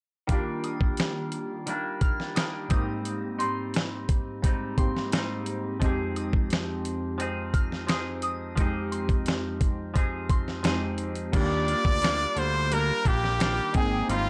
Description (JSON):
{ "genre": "indie pop, bedroom pop", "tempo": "87 BPM", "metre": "4/4", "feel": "straight", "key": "Eb major", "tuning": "A4 = 440 Hz", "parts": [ { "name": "semi-hollow electric guitar", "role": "accompaniment", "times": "0.3-14.3 s", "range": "Ab2 to Ab4", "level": "-37 LUFS", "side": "equal", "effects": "subtle chorus, warbly pitch drift" }, { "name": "warbly lo-fi synth keys", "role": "accompaniment", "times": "0.3-14.3 s", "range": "F2 to G5", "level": "-35 LUFS", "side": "equal", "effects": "chorus" }, { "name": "dusty soul sampler-style drum kit", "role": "drums", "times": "0.3-14.3 s", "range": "crash cymbal, hi-hat, kick drum, snare drum", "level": "-29 LUFS", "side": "equal", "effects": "none" }, { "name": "soft synth bell", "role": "second line", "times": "0.6-10.6 s", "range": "C6 to F6", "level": "-39 LUFS", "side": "equal", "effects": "lush chorus, tape echo" }, { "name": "brilliant trumpet", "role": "melody", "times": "11.3-14.3 s", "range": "F4 to D5", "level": "-29 LUFS", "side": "equal", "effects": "analog chorus, tape echo" }, { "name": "fat analog bass", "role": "bass", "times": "11.3-14.3 s", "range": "Ab1 to Eb2", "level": "-32 LUFS", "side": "equal", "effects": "tube saturation" } ], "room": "digital ambience", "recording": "dry, gritty hardware recording, cassette tape", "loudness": "-27 LUFS", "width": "mono", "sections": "0.3-11.3 A section; 11.3-14.3 B section", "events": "none", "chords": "0.3 Ebmaj7; 2.7 Abmaj7; 5.8 Fm7; 11.3 Ebmaj7; 13.7 Abmaj7", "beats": "| 0.29 0.98 1.67 2.36 | 3.05 3.74 4.43 5.12 | 5.81 6.50 7.19 7.88 | 8.57 9.26 9.95 10.64 | 11.33 12.02 12.71 13.40 | 14.09" }